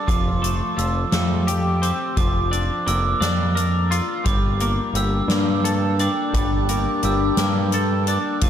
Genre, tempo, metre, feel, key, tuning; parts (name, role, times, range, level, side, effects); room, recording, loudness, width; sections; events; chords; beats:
post-rock; 58 BPM (dotted quarters); 6/8; straight; G dorian; A4 = 441 Hz
glockenspiel with hard plastic mallets; arpeggios; 0.0-8.5 s; D6 to E6; -26 LUFS; right 3 dB; analog delay
twelve-string electric guitar; arpeggios; 0.0-8.5 s; F3 to Bb4; -25 LUFS; left 1 dB; lush chorus, analog delay
growling picked electric bass; bass; 0.1-8.5 s; F1 to G2; -22 LUFS; equal; overdrive
soft-mallet drum kit; drums; 0.1-8.5 s; hi-hat, kick drum, snare drum; -25 LUFS; equal
evolving wavetable pad; sustained chords; 5.1-8.5 s; C4 to A5; -26 LUFS; left 3 dB; chorus, built-in reverb, phaser
moderate huge ambient reverb, RT60 7.7 s; dreamy mix soaked in reverb; -18 LUFS; side -9 dB against mid
0.0-8.5 A section
0.1 Fadd9; 2.2 Bb/F; 4.3 Gmadd9
| 0.08 1.13 | 2.17 3.22 | 4.26 5.30 | 6.34 7.39 | 8.43